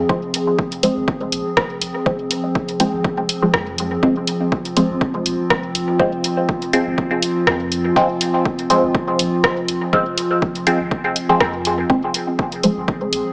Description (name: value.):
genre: dub techno.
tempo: 122 BPM.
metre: 4/4.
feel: swing 54% on 16ths.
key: F minor.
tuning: A4 = 441 Hz.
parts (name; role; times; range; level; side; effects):
warbly tape-like pad; sustained chords; 0.0-13.3 s; F3 to Ab4; -22 LUFS; equal; chorus, built-in reverb, sidechain pumping.
soft dub sub bass; bass; 0.0-13.2 s; F1 to F2; -33 LUFS; equal; sidechain pumping.
filtered dub chord stab; stabs; 0.1-13.3 s; F3 to C4; -19 LUFS; equal; phaser, sidechain pumping, dub echo.
electronic kick drum; drums; 0.1-13.0 s; none; -23 LUFS; equal; overdrive, studio reverb.
deep house drum kit; drums; 0.3-13.2 s; hi-hat, rim click; -19 LUFS; equal; overdrive, studio reverb, dub echo.
room: moderate echo chamber reverb, RT60 2.2 s.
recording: small speaker sound.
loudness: -16 LUFS.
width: side -30 dB against mid.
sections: 0.0-11.9 A section; 11.9-13.3 A section.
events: filter sweep on synth stab 0.0-11.9.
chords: 0.0 Fm.